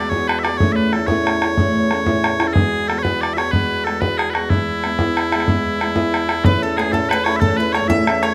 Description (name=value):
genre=celtic folk, Celtic slide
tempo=123 BPM (dotted quarters)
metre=12/8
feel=straight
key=unclear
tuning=A4 = 445 Hz
part: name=loud bright bagpipes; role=melody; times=0.0-8.3 s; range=E2 to E5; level=-23 LUFS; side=equal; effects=none
part: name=picked old ladder-braced acoustic guitar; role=accompaniment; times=0.0-8.3 s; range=A2 to F#4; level=-24 LUFS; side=equal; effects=none
part: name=bodhran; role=percussion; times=0.1-8.3 s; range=none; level=-22 LUFS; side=equal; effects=none
part: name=mandolin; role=second line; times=6.5-8.3 s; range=G#4 to E5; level=-26 LUFS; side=equal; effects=none
room=light reverb, small room ambience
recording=rough home demo mix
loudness=-18 LUFS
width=mono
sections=0.0-6.4 A section; 6.4-8.3 B section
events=none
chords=0.0 Eadd9; 0.6 A; 2.6 Eadd9; 4.5 E; 6.4 A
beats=0.12 | 0.60 1.09 1.58 2.07 | 2.56 3.04 3.53 4.02 | 4.50 4.99 5.48 5.96 | 6.45 6.93 7.42 7.90